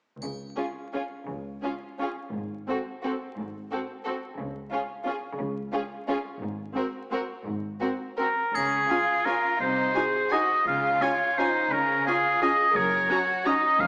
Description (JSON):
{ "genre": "classical, orchestral ballroom waltz", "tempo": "159-192 BPM", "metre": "3/4", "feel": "rubato", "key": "Db major", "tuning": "A4 = 440 Hz", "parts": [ { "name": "clear chamber double bass section", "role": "bass", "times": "0.2-13.9 s", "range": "F1 to Db2", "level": "-44 LUFS", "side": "equal", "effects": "none" }, { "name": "rich studio cello section", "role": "bass", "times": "0.2-13.9 s", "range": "F2 to Db3", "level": "-39 LUFS", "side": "equal", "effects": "none" }, { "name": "triangle", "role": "percussion", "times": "0.2-0.9, 8.6-9.2 s", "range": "none", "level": "-47 LUFS", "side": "equal", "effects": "none" }, { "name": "rich chamber violin section", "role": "melody", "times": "0.6-13.5 s", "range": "Ab4 to Bb5", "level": "-39 LUFS", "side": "equal", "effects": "none" }, { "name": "rich chamber violin section", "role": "second line", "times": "0.6-13.9 s", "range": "Db4 to Bb4", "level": "-35 LUFS", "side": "equal", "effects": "none" }, { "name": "rich symphonic viola section", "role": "accompaniment", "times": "0.6-13.5 s", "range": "C4 to Gb4", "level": "-35 LUFS", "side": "equal", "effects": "none" }, { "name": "clear oboe", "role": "second line", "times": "8.2-13.9 s", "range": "Ab4 to F5", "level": "-26 LUFS", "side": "equal", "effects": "none" } ], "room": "wet concert hall reverb, RT60 1.8 s", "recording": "vinyl crackle, small speaker sound", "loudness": "-27 LUFS", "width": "mono", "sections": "0.2-8.6 A section; 8.6-13.9 B section", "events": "none", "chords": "0.2 N.C.; 2.3 Ab; 4.4 N.C.; 6.4 Abadd9; 8.6 Db; 9.6 Ab7/C; 10.7 Db; 12.8 Gb" }